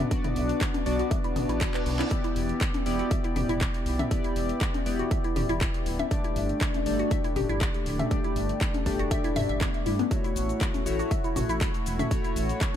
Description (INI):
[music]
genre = progressive house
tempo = 120 BPM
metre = 4/4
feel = straight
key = E dorian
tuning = A4 = 441 Hz
[part]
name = glassy wavetable pluck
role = arpeggios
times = 0.0-12.3 s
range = B3 to E5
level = -34 LUFS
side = equal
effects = chorus, phaser, sidechain pumping, dub echo
[part]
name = chorused polysynth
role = stabs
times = 0.0-12.8 s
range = A3 to D5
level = -30 LUFS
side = left 2 dB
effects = sidechain pumping, dub echo
[part]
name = dark detuned saw bass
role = bass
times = 0.0-12.5 s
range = D1 to G2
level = -31 LUFS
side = equal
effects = sidechain pumping
[part]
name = electronic kick drum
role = drums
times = 0.1-12.7 s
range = none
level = -28 LUFS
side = equal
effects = overdrive, small room ambience
[part]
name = house drum kit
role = drums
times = 0.1-12.7 s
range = handclaps, hi-hat, shaker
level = -36 LUFS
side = left 1 dB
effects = small room ambience
[part]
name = electronic toms and congas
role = percussion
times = 0.2-12.1 s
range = none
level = -33 LUFS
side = left 3 dB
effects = sidechain pumping on toms, small room ambience, sidechain pumping on perc
[part]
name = reverse cymbal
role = sound effects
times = 1.3-2.1 s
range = none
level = -42 LUFS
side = right 4 dB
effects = none
[sound]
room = digital ambience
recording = none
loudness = -25 LUFS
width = side -10 dB against mid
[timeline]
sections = 0.0-12.8 A section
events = reverse cymbal 1.3-2.1; drum fill 1.7-2.1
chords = 0.0 Bm; 2.1 Em7; 6.1 Gsus2; 10.1 F#m7